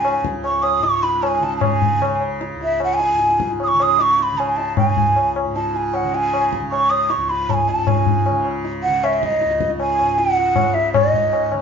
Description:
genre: indian classical, Hindustani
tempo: 154 BPM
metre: 4/4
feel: straight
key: unclear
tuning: A4 = 439 Hz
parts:
  - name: breathy hollow bansuri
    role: melody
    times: 0.0-11.5 s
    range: D#5 to D#6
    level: -17 LUFS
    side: right 2 dB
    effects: none
  - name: tanpura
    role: drone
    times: 0.0-11.6 s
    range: C#2 to C#3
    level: -26 LUFS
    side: left 1 dB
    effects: none
  - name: tabla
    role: percussion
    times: 0.0-11.6 s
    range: none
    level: -22 LUFS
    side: left 3 dB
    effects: none
room: wet studio reverb, RT60 0.6 s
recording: band playing live in one room, nothing above 7.5 kHz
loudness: -16 LUFS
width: side -6 dB against mid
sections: 0.0-11.0 A section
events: speeding up 0.0-11.6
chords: none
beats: | 0.04 0.44 0.83 1.23 | 1.62 2.02 2.41 2.81 | 3.20 3.59 3.98 4.38 | 4.77 5.16 5.55 5.94 | 6.33 6.71 7.10 7.49 | 7.88 8.26 8.65 9.03 | 9.42 9.80 10.19 10.57 | 10.95 11.33

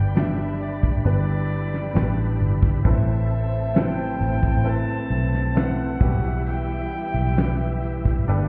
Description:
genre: pop ballad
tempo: 66 BPM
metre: 4/4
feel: straight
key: unclear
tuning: A4 = 442 Hz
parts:
  - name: warm violin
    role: melody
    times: 0.0-8.3 s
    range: D5 to A5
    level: -35 LUFS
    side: equal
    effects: digital delay
  - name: warm studio violin section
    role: second line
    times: 0.0-8.5 s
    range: B3 to B5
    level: -38 LUFS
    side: equal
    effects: digital delay
  - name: clear concert grand piano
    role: accompaniment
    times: 0.0-8.5 s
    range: G2 to D5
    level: -32 LUFS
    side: equal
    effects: none
  - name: bright tonewheel organ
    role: sustained chords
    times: 0.0-8.5 s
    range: E3 to B4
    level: -35 LUFS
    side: equal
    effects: chorus vibrato, fast rotary speaker
  - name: vintage muted fingered electric bass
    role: bass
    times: 0.0-8.5 s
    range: G1 to B1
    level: -25 LUFS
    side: equal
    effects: none
  - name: soft brush drum kit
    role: drums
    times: 0.2-8.5 s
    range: hi-hat, kick drum, snare drum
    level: -26 LUFS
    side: equal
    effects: none
  - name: tambourine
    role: percussion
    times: 0.2-8.5 s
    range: none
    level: -71 LUFS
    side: equal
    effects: none
room: small room ambience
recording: heard muffled through a wall, stone room reverb, EQ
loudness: -22 LUFS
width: mono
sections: 0.0-8.5 A section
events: none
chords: 0.0 G; 2.9 Amadd9; 6.0 Em/B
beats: 0.16 1.05 1.95 | 2.85 3.75 4.66 5.56 | 6.46 7.37 8.28

